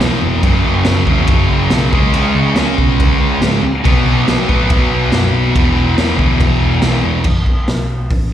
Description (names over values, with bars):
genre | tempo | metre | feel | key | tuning
garage rock duo or trio | 141 BPM | 4/4 | straight | unclear | A4 = 440 Hz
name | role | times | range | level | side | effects
thick fuzz guitar | riff | 0.0-7.3 s | E2 to C#4 | -14 LUFS | equal | distortion, slapback echo
hollow-body short-scale picked electric bass | bass | 0.0-8.3 s | E1 to B2 | -18 LUFS | equal | none
raw garage drum kit | drums | 0.0-8.2 s | crash cymbal, hi-hat, kick drum, snare drum | -15 LUFS | equal | none
room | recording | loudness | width
studio ambience | live gig heard through the venue's PA, recital hall reverb | -11 LUFS | side -10 dB against mid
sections
0.0-7.3 A section; 7.3-8.3 B section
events
none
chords
0.4 F#5; 1.9 C#5; 3.8 B5; 5.5 E5; 7.3 F#m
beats
0.01 | 0.43 0.86 1.29 1.72 | 2.14 2.57 2.99 3.42 | 3.85 4.27 4.70 5.12 | 5.55 5.97 6.40 6.83 | 7.25 7.68 8.11